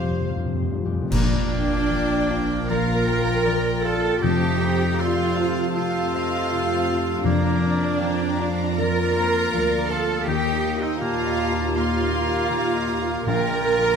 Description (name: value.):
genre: cinematic, emotional film score for orchestra.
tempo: 79 BPM.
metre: 4/4.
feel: uneven beats, rubato.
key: Bb major.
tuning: A4 = 440 Hz.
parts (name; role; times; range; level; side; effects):
warm symphonic violin section; melody; 0.0-14.0 s; D5 to C6; -35 LUFS; left 3 dB; none.
hollow flute section; second line; 0.0-14.0 s; C5 to Bb5; -34 LUFS; right 1 dB; none.
mellow clarinet; second line; 0.0-0.8 s; G4; -39 LUFS; left 2 dB; none.
warm oboe; second line; 0.0-14.0 s; Bb3 to C5; -30 LUFS; right 1 dB; none.
warm symphonic violin section; second line; 0.0-14.0 s; F4 to Bb5; -32 LUFS; left 2 dB; none.
dark baby grand piano; accompaniment; 0.0-14.0 s; Bb1 to F4; -29 LUFS; left 3 dB; none.
dark symphonic viola section; accompaniment; 0.0-14.0 s; D4 to C5; -30 LUFS; right 3 dB; none.
dark French horn section; sustained chords; 0.0-14.0 s; D3 to G4; -32 LUFS; left 4 dB; none.
concert harp; arpeggios; 0.0-14.0 s; Bb2 to G5; -30 LUFS; left 12 dB; none.
warm studio cello section; bass; 0.0-14.0 s; F3 to Bb4; -26 LUFS; right 4 dB; none.
warm symphonic double bass section; bass; 0.0-14.0 s; Bb1 to F2; -28 LUFS; right 4 dB; none.
timpani; percussion; 0.0-8.3, 13.3-14.0 s; F2 to Bb2; -29 LUFS; equal; none.
clash cymbals and concert bass drum; percussion; 1.1-2.7 s; none; -28 LUFS; equal; none.
room: moderate scoring stage reverb, RT60 2.0 s.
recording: none.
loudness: -20 LUFS.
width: side -6 dB against mid.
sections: 0.0-1.1 A section; 1.1-14.0 B section.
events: timpani fill 0.0-1.1; band accent 1.1-1.9.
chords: 0.0 Fsus2; 1.1 Bb; 4.2 F; 7.2 Bb/F; 10.3 Ebadd9; 13.3 Bb.